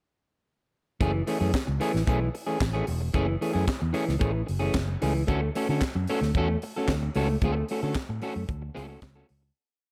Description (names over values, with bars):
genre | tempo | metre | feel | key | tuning
disco | 112 BPM | 4/4 | straight | F# minor | A4 = 439 Hz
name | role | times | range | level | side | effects
electric guitar at the edge of break-up | accompaniment | 1.0-9.5 s | E3 to A4 | -31 LUFS | equal | spring reverb
fingered electric bass | bass | 1.0-9.5 s | E1 to D3 | -31 LUFS | equal | none
tight funk drum kit | drums | 1.0-9.4 s | handclaps, hi-hat, kick drum, snare drum | -33 LUFS | equal | none
room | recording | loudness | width
little or no reverb | none | -27 LUFS | mono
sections
1.0-9.6 groove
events
fade-out 7.4-9.6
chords
1.0 F#m9; 5.3 Dmaj7